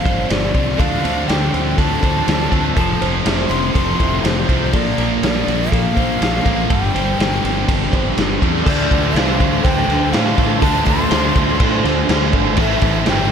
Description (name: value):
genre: rock, shoegaze and dream pop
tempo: 122 BPM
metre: 4/4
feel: straight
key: D minor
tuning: A4 = 441 Hz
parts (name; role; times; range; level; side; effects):
- breathy mellow jazz flute; melody; 0.0-13.3 s; C5 to C6; -24 LUFS; left 3 dB; tape echo
- twelve-string electric guitar; arpeggios; 0.0-13.3 s; A4 to C5; -28 LUFS; equal; analog chorus, tape echo
- crunchy overdriven guitar; riff; 0.0-13.3 s; G2 to F4; -23 LUFS; right 12 dB; reverse reverb
- thick fuzz guitar; riff; 0.0-13.3 s; G2 to Bb4; -24 LUFS; left 11 dB; distortion, wide subtle chorus
- fuzz fingered electric bass; bass; 0.1-13.3 s; F1 to A2; -22 LUFS; equal; overdrive
- raw garage drum kit; drums; 0.1-13.2 s; crash cymbal, kick drum, ride cymbal, snare drum; -19 LUFS; equal; none
- tight distorted guitar; riff; 0.8-13.3 s; F2 to D4; -23 LUFS; right 1 dB; distortion
- string machine, violins; sustained chords; 8.7-13.3 s; D4 to A5; -28 LUFS; equal; none
room: studio ambience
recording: none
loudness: -14 LUFS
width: side -7 dB against mid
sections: 0.0-8.7 A section; 8.7-13.3 B section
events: none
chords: 0.0 Gm11; 0.8 Dm7; 2.8 Fmaj7; 4.7 Bbmaj7; 6.7 Gm11; 8.7 Dm7; 12.6 Am7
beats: 0.30 | 0.79 1.28 1.78 2.27 | 2.77 3.26 3.75 4.24 | 4.74 5.23 5.72 6.21 | 6.70 7.19 7.68 8.18 | 8.67 9.16 9.64 10.13 | 10.62 11.11 11.60 12.09 | 12.58 13.07